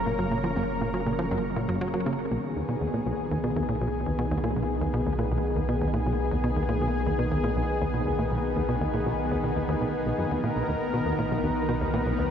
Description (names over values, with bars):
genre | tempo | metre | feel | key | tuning
ambient, sequencer-driven space music | 120 BPM | 4/4 | straight | B major | A4 = 440 Hz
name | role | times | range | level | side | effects
lush unison pad | sustained chords | 0.0-12.3 s | C#3 to A#4 | -28 LUFS | left 1 dB | chorus, shimmer reverb
warm sub bass | bass | 0.0-12.3 s | F#1 to B1 | -33 LUFS | equal | none
wind-like tuned noise texture | texture | 0.0-2.3 s | C#5 | -43 LUFS | right 2 dB | built-in reverb, shimmer reverb
wide unison pluck | arpeggios | 0.1-2.1 s | F#2 to C#4 | -36 LUFS | right 2 dB | auto-pan, tape echo, shimmer reverb
tight sequencer bass | riff | 0.1-12.3 s | B1 to F#3 | -29 LUFS | equal | tape echo, shimmer reverb
room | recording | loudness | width
wet cathedral reverb, RT60 6.0 s | in a vast, echoing space | -25 LUFS | side -8 dB against mid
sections
0.0-2.3 A section; 2.3-12.3 B section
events
none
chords
0.0 F#; 2.3 B6